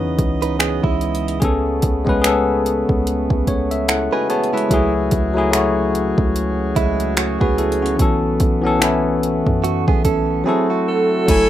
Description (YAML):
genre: contemporary R&B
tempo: 73 BPM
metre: 4/4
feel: swing 58% on 16ths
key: unclear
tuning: A4 = 439 Hz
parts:
  - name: barky tine electric piano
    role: accompaniment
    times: 0.0-11.5 s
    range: E3 to A5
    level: -18 LUFS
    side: left 3 dB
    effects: none
  - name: pipe organ, cornet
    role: sustained chords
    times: 0.0-11.5 s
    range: C#3 to G#5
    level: -26 LUFS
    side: right 3 dB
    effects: none
  - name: warm 808-style bass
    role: bass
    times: 0.0-11.5 s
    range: F#1 to F#2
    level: -24 LUFS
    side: right 1 dB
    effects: none
  - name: smooth R&B drum kit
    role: drums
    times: 0.2-11.5 s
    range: crash cymbal, finger snaps, hi-hat, kick drum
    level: -20 LUFS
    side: right 1 dB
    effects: overdrive
  - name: direct-recorded clean electric guitar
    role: arpeggios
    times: 0.4-11.3 s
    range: G#3 to B4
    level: -23 LUFS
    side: right 9 dB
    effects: wide subtle chorus
  - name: warm alto saxophone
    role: melody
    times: 10.9-11.5 s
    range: A4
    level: -16 LUFS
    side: right 2 dB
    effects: none
room: light reverb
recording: rough home demo mix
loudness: -15 LUFS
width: side -12 dB against mid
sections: 0.0-11.3 A section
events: tine electric piano fill 3.1-4.7; drums muted 10.5-11.3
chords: 0.0 C#m9; 1.4 Amaj9/C#; 8.0 B9sus4; 10.5 F#m9b5